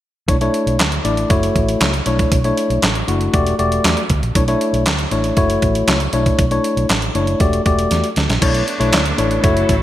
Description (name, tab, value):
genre	early-eighties boogie funk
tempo	118 BPM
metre	4/4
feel	straight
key	B minor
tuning	A4 = 439 Hz
part	tine electric piano	accompaniment	0.3-9.7 s	A3 to D5	-18 LUFS	left 2 dB	none
part	vintage muted fingered electric bass	bass	0.3-9.8 s	E1 to E2	-20 LUFS	right 1 dB	none
part	crisp 8-bit digital drum machine	drums	0.3-9.8 s	crash cymbal, handclaps, hi-hat, kick drum, snare drum	-18 LUFS	right 1 dB	overdrive, gated reverb
part	clear studio string section	sustained chords	8.4-9.8 s	F#3 to A4	-25 LUFS	right 1 dB	none
room	moderate plate reverb, RT60 2.8 s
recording	bright 1980s-style digital production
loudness	-14 LUFS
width	side -13 dB against mid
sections	0.3-8.4 A section; 8.4-9.8 B section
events	drum fill 7.9-8.4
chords	0.3 Bm11; 1.3 F#m7; 2.1 Bm11; 3.3 Em11; 4.4 Bm11; 5.4 F#m7; 6.1 Bm11; 7.4 Em11; 8.4 Bm11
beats	| 0.29 0.80 1.30 1.81 | 2.32 2.83 3.34 3.85 | 4.35 4.86 5.37 5.88 | 6.39 6.90 7.41 7.91 | 8.42 8.93 9.44